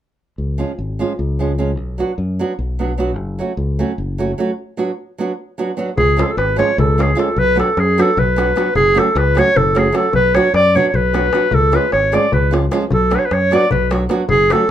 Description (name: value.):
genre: balkan folk, Balkan wedding band.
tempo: 302 BPM (eighths).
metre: 7/8.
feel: straight.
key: unclear.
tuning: A4 = 441 Hz.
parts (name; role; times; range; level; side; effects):
fingered electric bass; bass; 0.4-14.5 s; F#1 to F#2; -19 LUFS; left 1 dB; none.
nylon-string guitar; accompaniment; 0.6-14.6 s; E#3 to F#4; -20 LUFS; right 3 dB; none.
clear clarinet; melody; 6.0-14.7 s; G#4 to D5; -14 LUFS; equal; none.
darbuka; percussion; 6.0-14.6 s; none; -23 LUFS; left 3 dB; none.
room: moderate small room reverb, RT60 0.6 s.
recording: minimal, uncompressed stereo recording.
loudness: -14 LUFS.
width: side -10 dB against mid.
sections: 0.4-6.0 A section; 6.0-14.7 B section.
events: break 4.6-6.0; drum fill 10.7-11.5.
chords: 0.4 C#; 1.8 Bm; 3.2 F#m; 4.6 Bm; 6.0 C#; 7.4 Bm; 8.8 F#m; 10.1 Bm; 11.5 C#; 12.9 Bm.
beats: | 0.38 0.58 0.78 0.98 1.18 1.38 1.58 | 1.78 1.98 2.18 2.38 2.58 2.77 2.98 | 3.17 3.37 3.57 3.77 3.97 4.17 4.37 | 4.57 4.77 4.97 5.17 5.37 5.57 5.77 | 5.97 6.17 6.37 6.56 6.76 6.96 7.16 | 7.36 7.56 7.76 7.96 8.15 8.35 8.55 | 8.75 8.95 9.15 9.35 9.54 9.74 9.94 | 10.14 10.34 10.54 10.74 10.93 11.13 11.33 | 11.53 11.73 11.93 12.12 12.32 12.52 12.72 | 12.91 13.11 13.31 13.51 13.71 13.90 14.10 | 14.30 14.49 14.69.